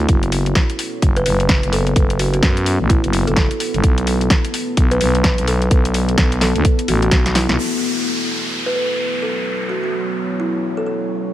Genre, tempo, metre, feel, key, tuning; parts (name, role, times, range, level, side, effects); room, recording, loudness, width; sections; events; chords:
bass house; 128 BPM; 4/4; swing 60% on 16ths; F# minor; A4 = 441 Hz
kalimba; melody; 0.0-11.0 s; E4 to B4; -23 LUFS; right 1 dB; dub echo
growling FM bass; bass; 0.0-7.6 s; F#1 to F#2; -18 LUFS; equal; sidechain pumping
deep dark ambient pad; texture; 0.0-11.3 s; F#3 to D5; -25 LUFS; left 2 dB; chorus, built-in reverb, sidechain pumping
electronic kick drum; drums; 0.1-7.2 s; -16 LUFS; equal
house drum kit; drums; 0.1-7.6 s; hi-hat, snare drum; -21 LUFS; equal; low-pass filter on hats, low-pass filter on snare
downlifter; sound effects; 7.6-11.3 s; -24 LUFS; equal
digital ambience; -15 LUFS; side -13 dB against mid
0.0-7.6 A section; 7.6-11.3 B section
filter sweep on FM bass 0.0-7.6; drum fill 7.2-7.6; band accent 7.5
0.1 F#m; 3.8 Bm; 7.6 F#m